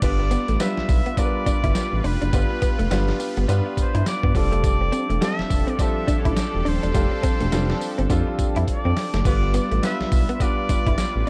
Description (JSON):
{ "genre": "R&B, new jack swing", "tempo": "104 BPM", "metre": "4/4", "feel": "swing 60% on 16ths", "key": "unclear", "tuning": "A4 = 438 Hz", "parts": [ { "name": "trumpet with straight mute", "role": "melody", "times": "0.0-11.3 s", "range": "B4 to E5", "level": "-32 LUFS", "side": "equal", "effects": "none" }, { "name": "clear concert grand piano", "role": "accompaniment", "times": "0.0-11.3 s", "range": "G3 to B4", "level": "-31 LUFS", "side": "equal", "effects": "none" }, { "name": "sweeping resonant pad", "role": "sustained chords", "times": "0.0-11.3 s", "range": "F3 to B4", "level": "-33 LUFS", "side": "equal", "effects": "chorus" }, { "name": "smooth synth bass", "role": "bass", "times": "0.0-11.3 s", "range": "D#1 to G2", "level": "-25 LUFS", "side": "equal", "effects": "none" }, { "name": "boom bap sampler-style drum kit", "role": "drums", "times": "0.0-11.3 s", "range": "crash cymbal, hi-hat, kick drum, snare drum, tambourine", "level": "-26 LUFS", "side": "equal", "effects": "none" }, { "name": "direct-recorded clean electric guitar", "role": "riff", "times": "0.2-11.3 s", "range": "G3 to E4", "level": "-31 LUFS", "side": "equal", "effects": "ensemble chorus" } ], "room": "little or no reverb", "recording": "dark, warm production", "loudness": "-22 LUFS", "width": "mono", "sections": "0.0-11.3 A section", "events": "drum fill 8.7-9.3", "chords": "0.0 G7; 4.3 F69; 9.3 G7" }